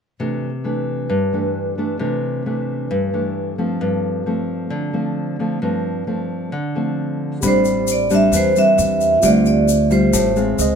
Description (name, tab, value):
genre	bossa nova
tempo	133 BPM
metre	4/4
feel	straight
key	C major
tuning	A4 = 440 Hz
part	nylon-string guitar	accompaniment	0.2-10.8 s	G2 to F4	-19 LUFS	left 1 dB	none
part	tine electric piano	accompaniment	7.4-10.8 s	F4 to B5	-25 LUFS	right 5 dB	medium stereo tremolo
part	upright bass	bass	7.4-10.8 s	A1 to E2	-20 LUFS	right 1 dB	none
part	egg shaker	percussion	7.4-10.8 s	none	-26 LUFS	left 7 dB	none
part	vibraphone with medium hard mallets	melody	7.5-10.8 s	C5 to E5	-16 LUFS	right 2 dB	none
room	moderate studio reverb, RT60 0.8 s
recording	minimal, uncompressed stereo recording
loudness	-16 LUFS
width	side -7 dB against mid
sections	0.2-7.4 A section; 7.4-10.8 B section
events	none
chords	0.2 C69; 3.8 G9sus4; 7.4 Am11; 9.2 Dm11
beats	| 0.20 0.65 1.10 1.55 | 2.00 2.46 2.91 3.36 | 3.81 4.26 4.71 5.17 | 5.62 6.07 6.52 6.97 | 7.42 7.88 8.33 8.78 | 9.23 9.68 10.13 10.58